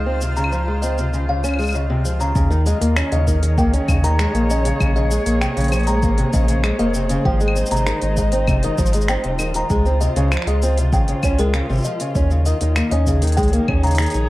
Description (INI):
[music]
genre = folktronica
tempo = 98 BPM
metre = 4/4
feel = straight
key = unclear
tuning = A4 = 440 Hz
[part]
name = music box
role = second line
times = 0.0-14.0 s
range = Bb4 to Bb5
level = -26 LUFS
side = left 2 dB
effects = vintage 12-bit sampler grit, tape echo
[part]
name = dark string quartet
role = sustained chords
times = 0.0-14.3 s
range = Eb3 to Db5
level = -27 LUFS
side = equal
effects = none
[part]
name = fingerpicked old ladder-braced acoustic guitar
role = arpeggios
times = 0.0-14.3 s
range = C3 to Db4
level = -22 LUFS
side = equal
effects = vintage 12-bit sampler grit, tape echo
[part]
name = warm sub bass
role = bass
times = 0.0-14.3 s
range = Eb1 to Eb2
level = -19 LUFS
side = equal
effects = none
[part]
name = backwards swelling texture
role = texture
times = 0.0-2.4 s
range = F6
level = -38 LUFS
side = right 1 dB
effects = built-in reverb
[part]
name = organic electronic drum kit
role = drums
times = 0.2-14.3 s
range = claves, finger snaps, hi-hat, shaker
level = -27 LUFS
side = left 1 dB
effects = none
[part]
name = electronic kick drum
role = drums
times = 2.4-13.8 s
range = none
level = -21 LUFS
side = equal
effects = none
[sound]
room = digital ambience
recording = vinyl crackle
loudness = -16 LUFS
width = side -17 dB against mid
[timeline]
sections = 0.0-2.4 A section; 2.4-14.3 B section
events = none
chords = 0.0 Dbmaj7; 2.4 Eb7sus4; 4.8 Bbm9; 7.3 Ab6; 9.7 Dbmaj7; 12.2 Eb7sus4